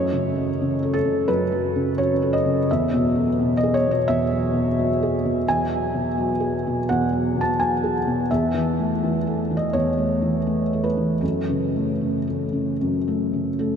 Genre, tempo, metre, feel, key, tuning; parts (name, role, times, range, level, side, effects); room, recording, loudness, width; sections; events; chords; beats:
neoclassical minimalist piano; 84 BPM; 4/4; uneven beats, rubato; E major; A4 = 435 Hz
felt-muted upright piano; solo; 0.0-13.8 s; E2 to A5; -20 LUFS; equal
wet huge ambient reverb, RT60 9.1 s; dreamy mix soaked in reverb; -20 LUFS; side -7 dB against mid
0.0-13.8 A section
0.0 F#m; 2.7 Eadd9; 8.3 A/E; 11.2 F#m
0.59 1.29 1.98 | 2.68 3.37 4.05 4.75 | 5.45 6.16 6.88 7.58 | 8.29 9.00 9.72 10.46 | 11.22 12.02 12.82 13.60